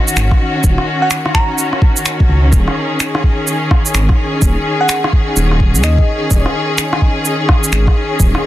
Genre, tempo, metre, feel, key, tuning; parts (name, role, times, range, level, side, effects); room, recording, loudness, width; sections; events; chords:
future garage; 127 BPM; 4/4; swing 63% on 16ths; Eb minor; A4 = 440 Hz
rich studio string section; sustained chords; 0.0-8.5 s; Eb3 to Ab4; -17 LUFS; left 1 dB; sidechain pumping
electronic shaker, finger snaps and rim click; drums; 0.1-8.4 s; -19 LUFS; right 1 dB; soft clipping on snare
dark detuned saw bass; bass; 0.2-8.3 s; Eb1 to Eb2; -14 LUFS; equal; sidechain pumping
electronic kick drum; drums; 0.3-8.3 s; -12 LUFS; equal
bell-like FM electric piano; melody; 1.0-1.7, 4.8-6.5 s; Eb5 to Bb5; -22 LUFS; equal; chorus, dub echo
little or no reverb; dense, heavily limited modern master; -11 LUFS; side -14 dB against mid
0.0-8.5 A section
0.0 Ebm7